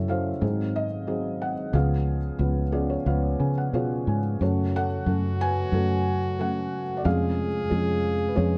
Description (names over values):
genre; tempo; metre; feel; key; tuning
acoustic folk-pop ballad; 91 BPM; 4/4; straight; F# harmonic minor from 4.4 s; A4 = 442 Hz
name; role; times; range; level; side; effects
felt-muted upright piano; melody; 0.0-8.6 s; E#1 to G#5; -29 LUFS; equal; none
fingered electric bass; bass; 0.0-8.6 s; C#2 to C#3; -28 LUFS; equal; none
warm French horn; second line; 4.4-8.6 s; F#4 to G#4; -32 LUFS; equal; none
room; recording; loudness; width
light reverb; close, detailed microphones; -26 LUFS; mono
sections
0.0-4.4 A section; 4.4-8.6 B section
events
felt piano fill 2.4-4.4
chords
0.4 G#7; 1.7 C#7; 4.4 F#m; 7.1 C#/E#